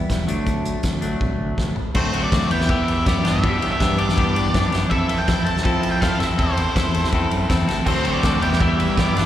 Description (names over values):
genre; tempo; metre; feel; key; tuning
indie rock; 162 BPM; 4/4; straight; unclear; A4 = 439 Hz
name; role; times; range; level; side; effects
clean electric guitar; riff; 0.0-9.3 s; E3 to A4; -24 LUFS; left 4 dB; wide subtle chorus, slapback echo
growling fingered electric bass; bass; 0.0-9.3 s; E1 to G3; -23 LUFS; right 1 dB; overdrive
loose indie drum kit; drums; 0.1-9.3 s; crash cymbal, hi-hat, kick drum, ride cymbal, snare drum, toms; -22 LUFS; equal; none
octave-fuzz lead guitar; melody; 2.0-9.3 s; C5 to A5; -25 LUFS; right 1 dB; distortion, slapback echo, plate reverb
overdriven electric guitar; riff; 7.8-9.3 s; G2 to F#4; -26 LUFS; right 9 dB; wide subtle chorus, slapback echo
room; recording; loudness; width
light reverb; live gig heard through the venue's PA, recital hall reverb; -17 LUFS; side -12 dB against mid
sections
0.0-2.0 A section; 2.0-9.3 B section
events
drum fill 1.2-2.0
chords
0.3 D; 2.0 D7; 2.5 Em; 3.2 G6; 4.9 Fmaj7; 6.4 Am/E; 7.9 D7; 8.4 Em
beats
0.09 | 0.47 0.84 1.21 1.58 | 1.95 2.32 2.69 3.06 | 3.43 3.80 4.17 4.54 | 4.91 5.28 5.65 6.02 | 6.39 6.76 7.13 7.50 | 7.87 8.24 8.61 8.97